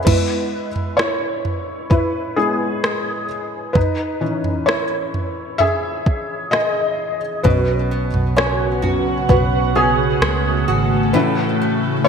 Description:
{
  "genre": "pop ballad",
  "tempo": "65 BPM",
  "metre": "4/4",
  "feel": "straight",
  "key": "unclear",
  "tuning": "A4 = 441 Hz",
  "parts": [
    { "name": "felt-muted upright piano", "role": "accompaniment", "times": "0.0-12.1 s", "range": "E3 to E5", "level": "-19 LUFS", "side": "left 2 dB", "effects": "ensemble chorus" },
    { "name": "smooth R&B drum kit", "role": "drums", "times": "0.1-10.4 s", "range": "crash cymbal, kick drum, rim click, toms", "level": "-20 LUFS", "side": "right 1 dB", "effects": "overdrive, gated reverb" },
    { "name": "ethereal airy pad", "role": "sustained chords", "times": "8.3-12.1 s", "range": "C#3 to F#4", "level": "-20 LUFS", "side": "right 2 dB", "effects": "ensemble chorus, built-in reverb, phaser" },
    { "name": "nylon-string guitar", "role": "arpeggios", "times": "7.4-12.1 s", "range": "A2 to F#4", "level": "-24 LUFS", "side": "right 5 dB", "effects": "lush chorus, ping-pong delay" },
    { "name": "vintage muted fingered electric bass", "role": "bass", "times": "7.5-11.1 s", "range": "G#1 to C#2", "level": "-21 LUFS", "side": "equal", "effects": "none" }
  ],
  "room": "moderate plate reverb, RT60 3.2 s",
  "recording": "bright 1980s-style digital production",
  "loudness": "-16 LUFS",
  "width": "side -6 dB against mid",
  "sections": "0.1-12.1 A section",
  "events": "felt piano solo 0.1-12.1",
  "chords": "0.1 E; 3.8 C#madd9; 7.5 Bsus2; 11.1 A"
}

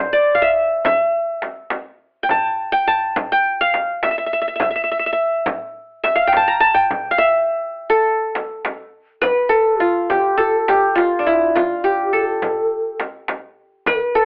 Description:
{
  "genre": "Turkish makam ensemble",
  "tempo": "104 BPM",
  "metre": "4/4",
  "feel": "straight",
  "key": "A minor, A makam ussak from 9.2 s",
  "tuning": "A4 = 442 Hz",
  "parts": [
    { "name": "qanun", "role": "melody", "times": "0.0-14.2 s", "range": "D4 to Bb5", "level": "-15 LUFS", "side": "equal", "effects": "none" },
    { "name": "frame drum", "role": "percussion", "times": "0.8-14.0 s", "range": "none", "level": "-23 LUFS", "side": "equal", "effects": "none" },
    { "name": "breathy mellow low ney", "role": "second line", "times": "9.2-14.2 s", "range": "F4 to C5-33c", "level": "-21 LUFS", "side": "equal", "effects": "none" }
  ],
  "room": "light reverb",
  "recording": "worn, warbling old tape, cassette tape, warbly pitch drift, telephone sound",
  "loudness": "-15 LUFS",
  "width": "side -32 dB against mid",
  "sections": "0.0-9.2 A section; 9.2-14.2 B section",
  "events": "none",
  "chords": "none"
}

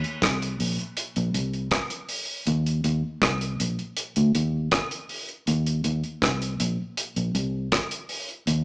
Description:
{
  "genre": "roots reggae",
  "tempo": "80 BPM",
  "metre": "4/4",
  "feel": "straight",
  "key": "unclear",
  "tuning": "A4 = 441 Hz",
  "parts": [
    { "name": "vintage muted fingered electric bass", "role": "bass", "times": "0.0-8.6 s", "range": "Bb1 to Eb2", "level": "-24 LUFS", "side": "equal", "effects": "none" },
    { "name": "damped 70s drum kit", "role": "drums", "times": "0.0-8.6 s", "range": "hi-hat, kick drum, rim click", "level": "-26 LUFS", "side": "equal", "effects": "none" }
  ],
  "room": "moderate large studio reverb, RT60 1.1 s",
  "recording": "band playing live in one room, small speaker sound",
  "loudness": "-24 LUFS",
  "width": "side -25 dB against mid",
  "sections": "0.0-8.6 A section",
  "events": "none",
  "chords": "none"
}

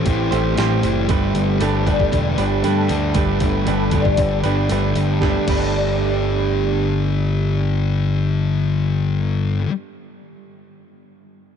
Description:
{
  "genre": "rock, shoegaze and dream pop",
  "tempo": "116 BPM",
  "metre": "4/4",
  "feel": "straight",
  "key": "G major",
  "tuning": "A4 = 441 Hz",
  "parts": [
    { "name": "picked twelve-string acoustic guitar", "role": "arpeggios", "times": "0.0-9.7 s", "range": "G3 to A4", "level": "-26 LUFS", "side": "left 6 dB", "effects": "ensemble chorus, slapback echo" },
    { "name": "direct-recorded clean electric guitar", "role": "riff", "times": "0.0-9.7 s", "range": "G3 to C5", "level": "-23 LUFS", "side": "right 18 dB", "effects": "reverse reverb" },
    { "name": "thick fuzz guitar", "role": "riff", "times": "0.0-9.7 s", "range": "G2 to A3", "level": "-21 LUFS", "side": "left 6 dB", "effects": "distortion, wide subtle chorus" },
    { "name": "growling picked electric bass", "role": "bass", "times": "0.0-9.6 s", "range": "E1 to G2", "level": "-22 LUFS", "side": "right 1 dB", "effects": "overdrive" },
    { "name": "clean 12-bit digital drum machine", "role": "drums", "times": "0.1-5.6 s", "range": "crash cymbal, hi-hat, kick drum, snare drum", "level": "-24 LUFS", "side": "right 1 dB", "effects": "none" }
  ],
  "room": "little or no reverb",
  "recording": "dark, warm production, nothing above 10.9 kHz",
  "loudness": "-16 LUFS",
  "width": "side -8 dB against mid",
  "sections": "0.0-5.2 A section; 5.2-9.4 B section",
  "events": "none",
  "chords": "0.0 Am7; 1.1 Gadd9"
}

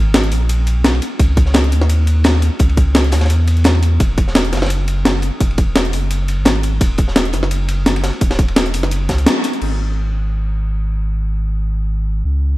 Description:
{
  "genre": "liquid drum and bass",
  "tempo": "171 BPM",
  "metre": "4/4",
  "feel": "swing 54% on 16ths",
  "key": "unclear",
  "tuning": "A4 = 440 Hz",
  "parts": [
    { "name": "warm sub bass", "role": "bass", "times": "0.0-12.6 s", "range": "D#1 to E2", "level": "-16 LUFS", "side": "equal", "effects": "none" },
    { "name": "breakbeat sampler-style drum kit", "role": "drums", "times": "0.1-9.7 s", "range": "crash cymbal, hi-hat, snare drum", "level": "-17 LUFS", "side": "equal", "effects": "studio reverb" },
    { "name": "crunchy breakbeat drum kit", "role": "drums", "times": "0.1-9.5 s", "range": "ride cymbal, snare drum", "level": "-27 LUFS", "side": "equal", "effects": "high-pass filter on cymbals, studio reverb, high-pass filter on snare, high-pass filter on room" },
    { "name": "electronic kick drum", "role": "drums", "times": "1.2-9.2 s", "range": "none", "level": "-14 LUFS", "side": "equal", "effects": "studio reverb" }
  ],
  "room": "light reverb, studio ambience",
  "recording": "none",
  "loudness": "-13 LUFS",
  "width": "side -18 dB against mid",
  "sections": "0.0-9.6 A section; 9.6-12.6 B section",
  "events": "drop 0.0-9.6; band accent 9.3",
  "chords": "none"
}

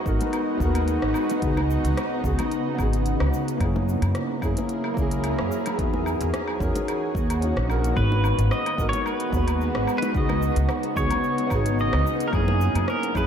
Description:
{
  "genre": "sunset chillout",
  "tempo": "110 BPM",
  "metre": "4/4",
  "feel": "swing 54% on 16ths",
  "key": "G# minor",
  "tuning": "A4 = 440 Hz",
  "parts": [
    { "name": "warm grand piano", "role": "accompaniment", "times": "0.0-13.3 s", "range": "A#3 to C#5", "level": "-29 LUFS", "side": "equal", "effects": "auto-pan, ping-pong delay" },
    { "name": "shimmering ambient pad", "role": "sustained chords", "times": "0.0-13.3 s", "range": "C#3 to A#4", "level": "-27 LUFS", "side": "equal", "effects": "chorus, built-in reverb" },
    { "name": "upright bass", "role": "bass", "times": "0.1-13.3 s", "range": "G#1 to F#2", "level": "-24 LUFS", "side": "equal", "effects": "none" },
    { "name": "deep house drum kit", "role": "drums", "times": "0.1-13.3 s", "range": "cabasa, hi-hat, rim click, woodblock", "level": "-34 LUFS", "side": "equal", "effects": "none" },
    { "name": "electronic kick drum", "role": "drums", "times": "0.1-13.3 s", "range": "none", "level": "-28 LUFS", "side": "equal", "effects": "none" },
    { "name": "bongos", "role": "percussion", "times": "0.2-12.6 s", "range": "none", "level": "-37 LUFS", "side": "left 2 dB", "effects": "none" },
    { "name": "pedal steel guitar", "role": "melody", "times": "8.0-13.2 s", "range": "G#4 to D#5", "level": "-27 LUFS", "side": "equal", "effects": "wide subtle chorus, diffuse ambient delay" }
  ],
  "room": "moderate plate reverb, RT60 2.3 s",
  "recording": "dreamy mix soaked in reverb",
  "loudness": "-21 LUFS",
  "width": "side -8 dB against mid",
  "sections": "0.0-8.0 A section; 8.0-13.3 B section",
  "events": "none",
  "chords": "0.0 G#m7; 1.4 C#9sus4; 3.6 F#9; 5.8 Emaj9; 6.9 D#m7; 8.0 G#m7; 10.2 C#9sus4; 12.3 F#9"
}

